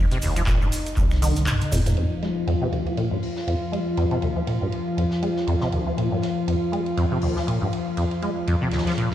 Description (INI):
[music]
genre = acid house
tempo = 120 BPM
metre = 4/4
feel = swing 57% on 16ths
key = unclear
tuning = A4 = 435 Hz
[part]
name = lush unison pad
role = sustained chords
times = 0.0-9.1 s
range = F3 to F4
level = -26 LUFS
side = left 2 dB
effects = chorus, sidechain pumping
[part]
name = acid bass, saw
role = riff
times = 0.0-9.1 s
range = Eb2 to Ab3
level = -24 LUFS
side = equal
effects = ensemble chorus, sidechain pumping, tape echo
[part]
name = warm sub bass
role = bass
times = 0.0-1.9 s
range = F1 to C2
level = -24 LUFS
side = equal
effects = tube saturation, sidechain pumping
[part]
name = booming analog drum machine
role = drums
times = 0.1-2.0 s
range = finger snaps, handclaps, hi-hat, toms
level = -28 LUFS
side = equal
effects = studio reverb
[part]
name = tight funk drum kit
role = drums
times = 0.1-9.1 s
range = hi-hat, ride cymbal, snare drum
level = -39 LUFS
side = right 2 dB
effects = sidechain pumping on cymbals, high-pass filter on cymbals, low-pass filter on cymbals, studio reverb, sidechain pumping on hats, high-pass filter on hats, low-pass filter on hats, high-pass filter on snare, low-pass filter on snare, high-pass filter on room, low-pass filter on room
[part]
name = cabasa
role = percussion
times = 0.1-2.0 s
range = none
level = -38 LUFS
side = right 4 dB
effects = none
[part]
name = electronic kick drum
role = drums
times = 0.5-1.1 s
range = none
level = -22 LUFS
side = equal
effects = studio reverb
[sound]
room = moderate lush hall reverb, RT60 1.8 s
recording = played on a big sound system in a bare room, large studio reverb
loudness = -21 LUFS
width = side -12 dB against mid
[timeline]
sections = 0.0-2.0 A section; 2.0-9.1 B section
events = kick drops out 1.5-2.0; drum fill 1.5-2.0; filter sweep on acid bass 2.0-9.1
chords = 0.0 F7(no3); 2.0 N.C.